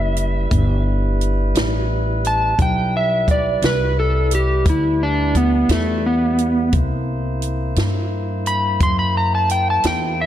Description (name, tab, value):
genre	slow blues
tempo	58 BPM (dotted quarters)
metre	12/8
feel	straight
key	E minor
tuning	A4 = 435 Hz
part	electric slide guitar	melody	0.0-10.3 s	A3 to C6	-19 LUFS	equal	slapback echo
part	tonewheel organ	sustained chords	0.0-10.3 s	G3 to C5	-27 LUFS	right 1 dB	overdrive, stopped rotary speaker
part	upright bass	bass	0.0-10.3 s	F#1 to G2	-20 LUFS	equal	none
part	compact cocktail drum kit	drums	0.2-10.0 s	hi-hat, kick drum, snare drum	-22 LUFS	equal	none
room	light reverb, small room ambience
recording	none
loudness	-16 LUFS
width	side -11 dB against mid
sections	0.0-10.3 A section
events	electric slide guitar solo 0.0-10.3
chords	0.0 Em; 6.7 C7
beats	0.51 1.55 | 2.58 3.62 4.66 5.70 | 6.73 7.77 8.81 9.84